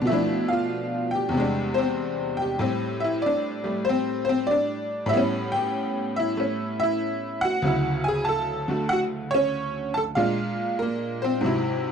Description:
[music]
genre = solo jazz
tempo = 95 BPM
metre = 4/4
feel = swing 67% on 8ths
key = A minor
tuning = A4 = 439 Hz
[part]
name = tack piano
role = solo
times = 0.0-11.9 s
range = D2 to A5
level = -22 LUFS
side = equal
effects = none
[sound]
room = light reverb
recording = dark, warm production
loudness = -23 LUFS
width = side -7 dB against mid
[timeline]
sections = 0.0-11.9 A section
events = none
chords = 0.1 Bm7b5; 1.3 E7alt; 2.6 Am7; 5.1 A9; 7.6 Dmaj9; 10.2 Bb7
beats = | 0.07 0.70 1.33 1.96 | 2.59 3.22 3.85 4.48 | 5.11 5.74 6.37 7.00 | 7.63 8.27 8.90 9.53 | 10.16 10.79 11.42

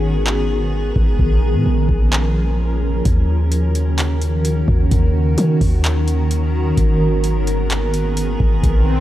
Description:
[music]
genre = hip hop, atmospheric cloud-rap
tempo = 129 BPM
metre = 4/4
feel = half-time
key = Eb minor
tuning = A4 = 440 Hz
[part]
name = granular cloud pad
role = sustained chords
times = 0.0-9.0 s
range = Eb3 to Bb4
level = -20 LUFS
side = equal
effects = built-in reverb, sidechain pumping
[part]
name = warm 808-style bass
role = bass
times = 0.0-9.0 s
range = Ab1 to Eb3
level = -18 LUFS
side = equal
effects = none
[part]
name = booming analog drum machine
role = drums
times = 0.3-8.8 s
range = handclaps, hi-hat, kick drum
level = -18 LUFS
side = equal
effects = overdrive
[part]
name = swell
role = sound effects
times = 8.8-9.0 s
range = none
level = -24 LUFS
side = left 5 dB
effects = none
[sound]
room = little or no reverb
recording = dry, gritty hardware recording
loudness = -15 LUFS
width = side -14 dB against mid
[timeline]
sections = 0.0-9.0 A section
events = break 0.0-3.1; swell 8.8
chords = 0.0 Abmadd9; 1.2 Bbm7; 3.1 Ebm7; 6.8 Abmadd9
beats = 0.26 0.73 | 1.19 1.66 2.12 2.59 | 3.05 3.52 3.98 4.45 | 4.91 5.38 5.84 6.31 | 6.77 7.24 7.71 8.17 | 8.63

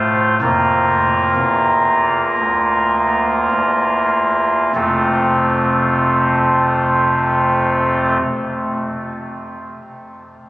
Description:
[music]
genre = classical, chorale-style piece for pipe organ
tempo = 48-66 BPM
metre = 4/4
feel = rubato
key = F major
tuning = A4 = 440 Hz
[part]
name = chamber organ, soft reed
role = solo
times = 0.0-8.2 s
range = F1 to C5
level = -14 LUFS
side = equal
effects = none
[sound]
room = wet cathedral reverb, RT60 6.3 s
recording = recorded on a phone in the room, studio reverb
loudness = -13 LUFS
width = side -18 dB against mid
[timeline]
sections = 0.0-4.8 A section; 4.8-9.7 B section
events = slowing down 0.0-4.8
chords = 0.4 Bb/F; 4.8 F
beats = | 0.41 1.36 2.39 3.52 | 4.76 6.00 7.24

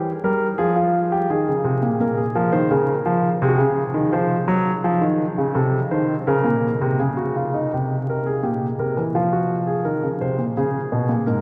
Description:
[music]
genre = classical, baroque-style two-part invention for grand piano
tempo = 84 BPM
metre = 4/4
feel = straight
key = Bb minor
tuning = A4 = 439 Hz
[part]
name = warm grand piano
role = solo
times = 0.0-11.4 s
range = Ab2 to C5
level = -21 LUFS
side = equal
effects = none
[sound]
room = wet cathedral reverb, RT60 7.7 s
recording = recorded in a church or concert hall, vinyl crackle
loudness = -21 LUFS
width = mono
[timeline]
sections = 0.0-7.7 A section; 7.7-11.4 B section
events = none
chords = 0.0 C (rootless); 0.6 Fm; 2.0 Bbm; 3.4 Ab/C; 4.8 F (rootless); 6.3 Bbm; 7.7 C7(no3); 9.1 Fm; 10.6 Db5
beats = 0.59 1.29 | 1.99 2.70 3.41 4.12 | 4.84 5.55 6.27 6.99 | 7.71 8.43 9.14 9.85 | 10.56 11.26

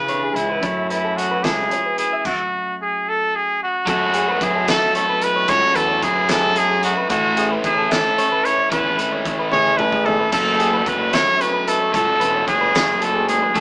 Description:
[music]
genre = math rock and midwest emo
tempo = 74 BPM (dotted quarters)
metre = 6/8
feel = straight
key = F# minor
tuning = A4 = 436 Hz
[part]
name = clear trumpet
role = melody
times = 0.0-13.6 s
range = E4 to C#5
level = -18 LUFS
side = equal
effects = none
[part]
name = twelve-string electric guitar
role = accompaniment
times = 0.0-13.6 s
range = F#2 to A4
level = -30 LUFS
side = equal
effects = none
[part]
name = electric guitar through a small old amp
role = arpeggios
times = 0.0-13.6 s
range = G#4 to E5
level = -25 LUFS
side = left 1 dB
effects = none
[part]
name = fuzz fingered electric bass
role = bass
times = 0.0-13.6 s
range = E1 to C#3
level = -26 LUFS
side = equal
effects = overdrive
[part]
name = loose indie drum kit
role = drums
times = 0.1-13.6 s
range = crash cymbal, hi-hat, kick drum, snare drum, toms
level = -25 LUFS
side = equal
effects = none
[part]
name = biting overdriven guitar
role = riff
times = 3.9-13.6 s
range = F#3 to A4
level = -24 LUFS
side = equal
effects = none
[sound]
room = moderate studio reverb, RT60 0.6 s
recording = band playing live in one room, small speaker sound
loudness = -16 LUFS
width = side -28 dB against mid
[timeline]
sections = 0.0-3.9 A section; 3.9-13.6 B section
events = drum fill 9.5-10.3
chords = 0.0 C#m7; 0.6 F#m11; 3.9 F#m9; 7.1 Amaj9; 10.3 F#m9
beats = | 0.62 1.44 | 2.25 3.06 | 3.87 4.68 | 5.49 6.29 | 7.10 7.91 | 8.71 9.52 | 10.33 11.14 | 11.94 12.75 | 13.56

